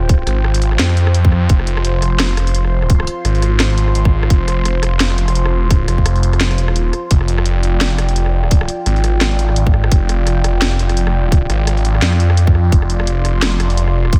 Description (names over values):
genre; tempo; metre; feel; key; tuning
half-time drum and bass; 171 BPM; 4/4; swing 57% on 16ths, half-time; F dorian; A4 = 440 Hz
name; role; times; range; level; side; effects
dark analog pad; sustained chords; 0.0-14.2 s; F4 to C6; -26 LUFS; equal; chorus, sidechain pumping
phased detuned saw bass; bass; 0.0-14.2 s; F1 to F2; -17 LUFS; equal; phaser
drum and bass drum kit; drums; 0.1-14.2 s; hi-hat, rim click, snare drum; -23 LUFS; equal; none
electronic kick drum; drums; 0.1-14.2 s; none; -14 LUFS; equal; none
room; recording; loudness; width
light reverb, digital ambience; none; -15 LUFS; mono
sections
0.0-14.2 A section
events
break 6.4-7.1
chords
0.0 F5